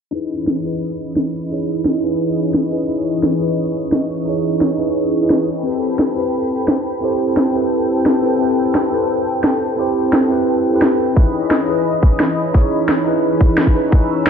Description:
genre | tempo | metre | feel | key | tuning
liquid drum and bass | 174 BPM | 4/4 | straight | C# minor | A4 = 440 Hz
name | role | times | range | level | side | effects
mellow tine electric piano | accompaniment | 0.1-14.3 s | C4 to C#5 | -18 LUFS | equal | phaser, low-pass filter, ping-pong delay
warm analog pad | sustained chords | 0.1-14.3 s | E3 to E6 | -22 LUFS | left 1 dB | chorus, sidechain pumping
electronic snare drum | drums | 0.5-14.3 s | none | -18 LUFS | equal | studio reverb
electronic kick drum | drums | 11.2-14.0 s | none | -12 LUFS | equal | studio reverb
room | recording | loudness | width
light reverb | low-pass filter | -14 LUFS | side -7 dB against mid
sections
0.1-14.3 A section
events
filter sweep on tine electric piano 0.1-14.3; filter sweep 0.1-14.3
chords
0.1 C#m9; 5.5 Am9; 11.2 C#m9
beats
| 0.13 0.47 0.82 1.17 | 1.51 1.85 2.20 2.54 | 2.89 3.23 3.58 3.92 | 4.27 4.61 4.96 5.30 | 5.65 5.99 6.34 6.68 | 7.03 7.37 7.72 8.06 | 8.41 8.75 9.10 9.44 | 9.79 10.13 10.47 10.82 | 11.16 11.51 11.85 12.20 | 12.54 12.89 13.23 13.58 | 13.92 14.27

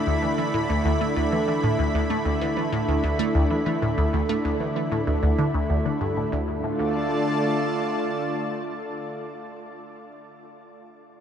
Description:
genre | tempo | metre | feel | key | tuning
ambient, sequencer-driven space music | 96 BPM | 4/4 | straight | D dorian | A4 = 440 Hz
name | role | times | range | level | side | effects
lush unison pad | sustained chords | 0.0-9.6 s | D3 to B5 | -25 LUFS | equal | chorus, shimmer reverb
resonant blip pluck | riff | 0.1-6.6 s | D2 to A3 | -25 LUFS | equal | phaser, wide subtle chorus, tape echo
room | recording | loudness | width
wet huge ambient reverb, RT60 9.2 s | dark, warm production | -22 LUFS | side -8 dB against mid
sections
0.0-6.3 A section; 6.3-8.8 B section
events
none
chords
0.0 Dsus2; 6.3 Dm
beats
0.07 0.69 | 1.32 1.94 2.57 3.19 | 3.82 4.44 5.07 5.69 | 6.32 6.94 7.57 8.19

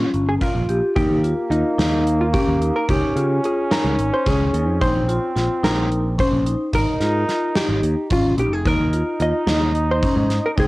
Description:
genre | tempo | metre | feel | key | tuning
progressive instrumental, band music in an uneven meter | 218 BPM (eighths) | 7/8 | straight | unclear | A4 = 440 Hz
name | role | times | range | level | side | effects
hollow-body jazz guitar | melody | 0.0-10.7 s | Eb4 to Eb5 | -24 LUFS | equal | cassette tape
vibraphone with medium mallets | arpeggios | 0.0-10.7 s | Db4 to G4 | -23 LUFS | left 2 dB | cassette tape
picked electric bass | bass | 0.0-10.7 s | F1 to Db3 | -22 LUFS | equal | none
gated 80s drum kit | drums | 0.1-10.7 s | hi-hat, kick drum, snare drum | -23 LUFS | equal | cassette tape
bright trombone | second line | 1.0-10.7 s | Bb3 to Eb4 | -26 LUFS | right 2 dB | cassette tape, analog delay
room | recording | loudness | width
light reverb, small room ambience | home recording on cassette | -17 LUFS | side -20 dB against mid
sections
1.0-10.7 A section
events
none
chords
0.0 Bbm; 1.0 Eb; 2.9 Dbsus2; 4.8 Bbsus2; 6.7 Absus2; 8.7 Eb5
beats
0.13 0.41 0.69 | 0.96 1.24 1.51 1.79 2.06 2.34 2.61 | 2.89 3.16 3.44 3.71 3.99 4.26 4.54 | 4.81 5.09 5.36 5.64 5.91 6.19 6.46 | 6.74 7.01 7.28 7.56 7.83 8.11 8.38 | 8.66 8.93 9.20 9.48 9.75 10.03 10.30 | 10.57

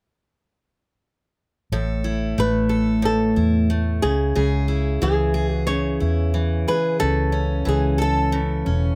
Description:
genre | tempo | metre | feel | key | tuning
pop | 91 BPM | 4/4 | swing 55% on 16ths | A major | A4 = 441 Hz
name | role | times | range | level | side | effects
picked steel-string acoustic guitar | accompaniment | 1.7-9.0 s | A2 to A4 | -25 LUFS | equal | none
vintage muted fingered electric bass | bass | 1.7-9.0 s | E1 to E2 | -24 LUFS | equal | none
flamenco guitar | melody | 2.4-9.0 s | G#4 to C#5 | -27 LUFS | equal | none
room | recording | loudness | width
little or no reverb | close, detailed microphones | -21 LUFS | mono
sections
1.7-9.0 A section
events
none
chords
1.7 A5; 4.0 C#m; 7.0 A/C#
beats
| 1.72 2.38 3.04 3.70 | 4.37 5.03 5.69 6.35 | 7.01 7.67 8.33

